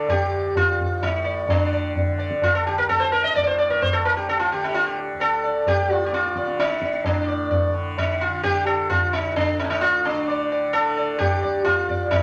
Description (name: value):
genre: indian classical, Hindustani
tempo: 130 BPM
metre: 3/4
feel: straight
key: D raga bhairavi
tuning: A4 = 444 Hz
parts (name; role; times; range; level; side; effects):
- sitar; melody; 0.0-12.2 s; D4 to Eb5; -23 LUFS; equal; none
- tanpura; drone; 0.0-12.2 s; D2 to D3; -34 LUFS; equal; none
- tabla; percussion; 0.1-12.2 s; none; -29 LUFS; equal; none
room: moderate studio reverb, RT60 0.7 s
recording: none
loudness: -22 LUFS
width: mono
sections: 0.0-7.1 A section; 7.1-12.2 B section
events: none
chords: none